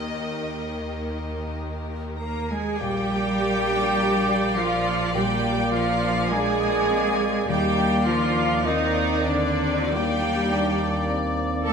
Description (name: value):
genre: classical, slow romantic movement for symphony orchestra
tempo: 45-54 BPM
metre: 4/4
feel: rubato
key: Bb major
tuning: A4 = 440 Hz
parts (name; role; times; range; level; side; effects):
- rich chamber violin section; melody; 0.0-11.7 s; D5 to Eb5; -34 LUFS; left 4 dB; none
- rich chamber violin section; second line; 0.0-11.7 s; G4 to Bb5; -32 LUFS; left 4 dB; none
- rich chamber viola section; accompaniment; 0.0-11.7 s; Eb3 to Bb4; -26 LUFS; right 3 dB; none
- concert harp; arpeggios; 0.0-11.7 s; Bb2 to Bb5; -34 LUFS; left 5 dB; none
- clear chamber cello section; bass; 0.0-11.7 s; Eb2 to Bb3; -28 LUFS; equal; none
- rich chamber double bass section; bass; 0.0-11.7 s; Bb1 to Eb2; -31 LUFS; right 2 dB; none
- mellow hollow silver concert flute; second line; 2.2-11.7 s; D5 to Bb5; -32 LUFS; left 1 dB; none
- mellow oboe; second line; 2.8-11.7 s; D5; -31 LUFS; left 2 dB; none
- mellow bassoon; accompaniment; 2.8-11.7 s; Bb3; -32 LUFS; equal; none
- mellow French horn section; sustained chords; 5.1-11.7 s; Bb3 to D4; -29 LUFS; left 2 dB; none
room: moderate scoring stage reverb, RT60 1.7 s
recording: minimal, uncompressed stereo recording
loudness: -21 LUFS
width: side -6 dB against mid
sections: 0.0-2.8 A section; 2.8-11.7 B section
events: none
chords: 0.0 Eb; 2.8 Bb; 5.1 Bb7; 7.5 Ebmaj7